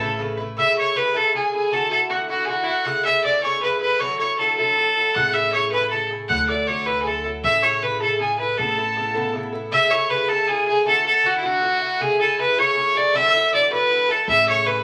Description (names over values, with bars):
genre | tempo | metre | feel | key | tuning
celtic folk, Celtic jig | 105 BPM (dotted quarters) | 6/8 | straight | A major | A4 = 440 Hz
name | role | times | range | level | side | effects
bright fiddle | melody | 0.0-14.8 s | E4 to F#5 | -21 LUFS | equal | none
wooden whistle | second line | 0.0-14.8 s | F#5 to F#6 | -28 LUFS | equal | none
Irish bouzouki | accompaniment | 0.0-14.8 s | C#3 to B4 | -30 LUFS | equal | none
upright bass | bass | 0.0-0.6, 5.2-9.7, 14.3-14.8 s | A1 to D2 | -35 LUFS | equal | none
room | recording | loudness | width
wet studio reverb, RT60 0.5 s | vinyl crackle | -20 LUFS | mono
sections
0.6-9.7 A section; 9.7-14.8 A section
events
none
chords
0.0 Aadd9; 0.6 Amaj7; 1.7 Dadd9; 2.9 Amaj7; 4.0 Dadd9; 5.2 Amaj7; 6.3 Dadd9; 7.4 Amaj7; 8.6 Aadd9; 9.7 Amaj7; 10.9 Dadd9; 12.0 Amaj7; 13.1 Dadd9; 14.3 Amaj7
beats
0.01 | 0.58 1.15 | 1.72 2.29 | 2.87 3.44 | 4.01 4.58 | 5.15 5.72 | 6.29 6.87 | 7.44 8.01 | 8.58 9.15 | 9.72 10.29 | 10.86 11.43 | 12.00 12.57 | 13.14 13.71 | 14.28